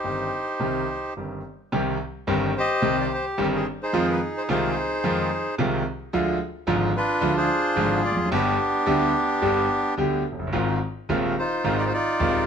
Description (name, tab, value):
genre	tango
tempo	109 BPM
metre	4/4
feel	rubato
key	C harmonic minor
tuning	A4 = 440 Hz
part	bandoneon	melody	0.0-12.5 s	B3 to Eb5	-24 LUFS	equal	plate reverb
part	clear concert grand piano	accompaniment	0.0-12.4 s	Eb1 to G4	-24 LUFS	equal	none
room	moderate studio reverb, RT60 1.0 s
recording	none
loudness	-21 LUFS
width	side -7 dB against mid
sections	0.0-1.7 A section; 1.7-12.5 A section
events	none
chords	0.0 Cm; 3.9 Fm7; 6.1 Ddim; 8.3 G; 10.5 Ab6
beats	0.05 0.60 1.16 | 1.72 2.27 2.83 3.38 | 3.93 4.48 5.03 5.58 | 6.13 6.68 7.22 7.78 | 8.33 8.88 9.43 9.98 | 10.54 11.09 11.64 12.20